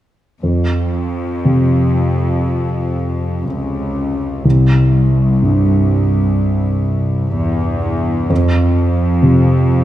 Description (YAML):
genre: cinematic, emotional film score for orchestra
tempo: 59-65 BPM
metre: 4/4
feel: rubato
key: unclear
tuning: A4 = 440 Hz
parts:
  - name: dark baby grand piano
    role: accompaniment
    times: 0.4-9.8 s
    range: C2 to C3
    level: -14 LUFS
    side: equal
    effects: none
  - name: rich symphonic cello section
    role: bass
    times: 0.4-9.8 s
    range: C2 to F2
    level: -19 LUFS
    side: left 1 dB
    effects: none
room: moderate scoring stage reverb, RT60 2.0 s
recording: none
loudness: -13 LUFS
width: side -13 dB against mid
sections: 0.4-9.8 A section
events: none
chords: 0.4 F5; 4.4 C; 8.3 F5